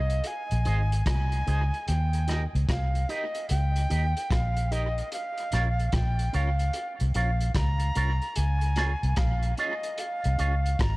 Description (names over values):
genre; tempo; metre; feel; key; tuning
roots reggae; 74 BPM; 4/4; swing 64% on 16ths; unclear; A4 = 441 Hz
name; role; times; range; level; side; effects
bright reedy silver concert flute; melody; 0.0-11.0 s; Eb5 to Bb5; -32 LUFS; equal; tape echo
vintage muted fingered electric bass; bass; 0.0-11.0 s; Ab1 to Eb2; -25 LUFS; equal; none
crunchy breakbeat drum kit; drums; 0.1-11.0 s; hi-hat, kick drum, rim click; -32 LUFS; equal; tape echo
electric guitar with an envelope filter; accompaniment; 0.7-10.5 s; Db4 to Eb5; -36 LUFS; right 3 dB; harmonic tremolo, tape echo
room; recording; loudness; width
small room reverb; dark, warm production; -24 LUFS; side -22 dB against mid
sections
0.0-11.0 A section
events
none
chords
0.0 Ab; 1.9 Eb; 5.1 Bbm; 8.4 Db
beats
0.25 1.06 | 1.87 2.69 3.50 4.31 | 5.12 5.93 6.74 7.55 | 8.36 9.17 9.98 10.79